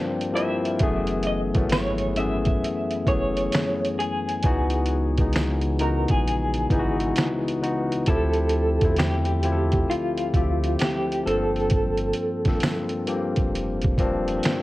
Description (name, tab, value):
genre	lo-fi hip hop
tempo	66 BPM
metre	4/4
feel	swing 66% on 16ths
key	unclear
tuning	A4 = 439 Hz
part	electric guitar through a small old amp	melody	0.0-14.4 s	F4 to E5	-28 LUFS	right 1 dB	tremolo, low-pass filter
part	barky tine electric piano	accompaniment	0.0-14.6 s	C#2 to E5	-25 LUFS	left 2 dB	overdrive, cassette tape, low-pass filter
part	trip hop sampler-style drum kit	drums	0.2-14.6 s	finger snaps, hi-hat, kick drum, snare drum	-25 LUFS	right 1 dB	none
part	saturated sub bass	bass	0.8-14.4 s	E1 to E2	-27 LUFS	right 1 dB	none
part	tambourine	percussion	1.7-14.6 s	none	-43 LUFS	right 5 dB	none
room	little or no reverb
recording	worn, warbling old tape, cassette tape, warbly pitch drift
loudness	-21 LUFS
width	side -17 dB against mid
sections	0.0-14.6 A section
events	none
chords	0.0 Gm11; 0.8 F#m11; 4.4 C#m11; 8.1 Dm11; 11.3 Gm11